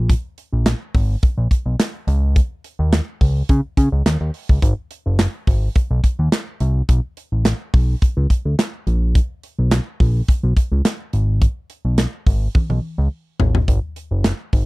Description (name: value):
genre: early-eighties boogie funk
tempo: 106 BPM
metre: 4/4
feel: straight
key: unclear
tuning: A4 = 439 Hz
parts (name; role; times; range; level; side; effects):
- fat analog bass; bass; 0.0-14.7 s; F#1 to C#3; -17 LUFS; equal; none
- modern studio drum kit; drums; 0.1-14.7 s; handclaps, hi-hat, kick drum, snare drum, toms; -16 LUFS; equal; none
room: little or no reverb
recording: dry, close 1970s-style studio recording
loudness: -16 LUFS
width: side -23 dB against mid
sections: 0.0-13.7 A section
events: drum fill 12.5-13.7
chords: none